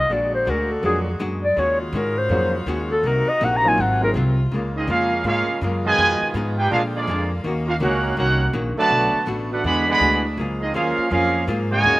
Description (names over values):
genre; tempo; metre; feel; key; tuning
jazz, big band swing; 164 BPM; 4/4; swing 63% on 8ths; Db major from 4.5 s; A4 = 441 Hz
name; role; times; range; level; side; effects
breathy clarinet; melody; 0.0-4.1 s; F4 to Bb5; -20 LUFS; left 1 dB; slapback echo
bright saxophone section; sustained chords; 0.0-12.0 s; C3 to Gb4; -32 LUFS; left 1 dB; none
upright bass; bass; 0.0-12.0 s; Ab1 to Bb2; -24 LUFS; equal; none
archtop guitar, miked and amplified; accompaniment; 0.1-12.0 s; Ab2 to Ab4; -28 LUFS; left 2 dB; slapback echo
warm baby grand piano; accompaniment; 0.8-4.1 s; Gb3 to Ab4; -25 LUFS; right 1 dB; none
clear trumpet section; melody; 4.8-12.0 s; Bb3 to B5; -20 LUFS; right 1 dB; slapback echo
clear trombone section; second line; 4.8-12.0 s; Bb2 to G4; -24 LUFS; right 3 dB; none
room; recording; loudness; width
little or no reverb; recorded outdoors, with no room sound; -18 LUFS; side -19 dB against mid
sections
0.0-4.5 A section; 4.5-12.0 B section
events
clarinet solo 0.0-4.5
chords
0.1 Bb7b13; 1.6 Ebm11; 3.0 Cm7b5; 3.8 Ab13; 4.5 Db6; 6.0 Fm7b5; 6.7 Bb7; 7.4 Ebm7; 8.9 Cbm7; 9.6 E9; 10.4 Gbmaj9